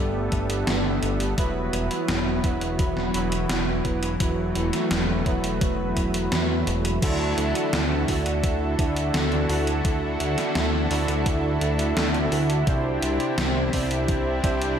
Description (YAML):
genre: synthwave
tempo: 85 BPM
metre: 4/4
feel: straight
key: unclear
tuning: A4 = 441 Hz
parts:
  - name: lush unison pad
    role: sustained chords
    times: 0.0-14.8 s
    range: C3 to A4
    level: -28 LUFS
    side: equal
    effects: chorus, sidechain pumping
  - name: analog synth brass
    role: stabs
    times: 0.0-14.8 s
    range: G2 to C5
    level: -27 LUFS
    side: right 2 dB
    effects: chorus, cassette tape, ping-pong delay, slapback echo
  - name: fat analog bass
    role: bass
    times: 0.0-14.8 s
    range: E1 to E2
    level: -27 LUFS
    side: equal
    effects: sidechain pumping
  - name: electronic kick drum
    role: drums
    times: 0.3-14.6 s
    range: none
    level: -26 LUFS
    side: equal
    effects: overdrive
  - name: gated 80s digital drum machine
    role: drums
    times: 0.3-14.8 s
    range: crash cymbal, hi-hat, snare drum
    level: -28 LUFS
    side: equal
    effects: gated reverb, gated reverb snare, overdrive
room: moderate concert hall reverb, RT60 2.1 s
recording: big arena sound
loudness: -21 LUFS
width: side -8 dB against mid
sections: 0.0-7.0 A section; 7.0-14.8 B section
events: none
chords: 0.0 Gadd9; 1.4 Esus2; 7.0 Dadd9; 12.7 Cadd9